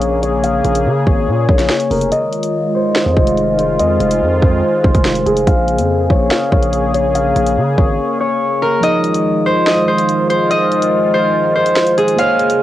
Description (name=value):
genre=hip hop, drill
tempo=143 BPM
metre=4/4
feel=half-time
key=F minor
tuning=A4 = 440 Hz
part: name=concert harp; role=melody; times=0.0-12.6 s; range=Ab4 to F5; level=-15 LUFS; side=left 1 dB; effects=low-pass filter, cassette tape
part: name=sweeping resonant pad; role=sustained chords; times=0.0-12.6 s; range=Db3 to Ab4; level=-19 LUFS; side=equal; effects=chorus, cassette tape
part: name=distorted 808-style bass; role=bass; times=0.0-8.0 s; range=F1 to Db3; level=-18 LUFS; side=equal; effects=distortion
part: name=drill drum kit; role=drums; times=0.0-12.6 s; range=hi-hat, kick drum, snare drum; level=-16 LUFS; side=equal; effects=cassette tape
part: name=mellow tine electric piano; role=accompaniment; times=8.8-12.6 s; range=F3 to Db5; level=-20 LUFS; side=right 2 dB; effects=phaser, low-pass filter, cassette tape
room=little or no reverb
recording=home recording on cassette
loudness=-12 LUFS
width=side -13 dB against mid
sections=0.0-12.6 A section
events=filter sweep 0.0-8.8; break 2.1-3.0, 8.0-8.8; kick muted 8.8-12.6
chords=0.0 Bbm7; 2.1 Fm7; 5.5 Bbm7; 8.8 Fm7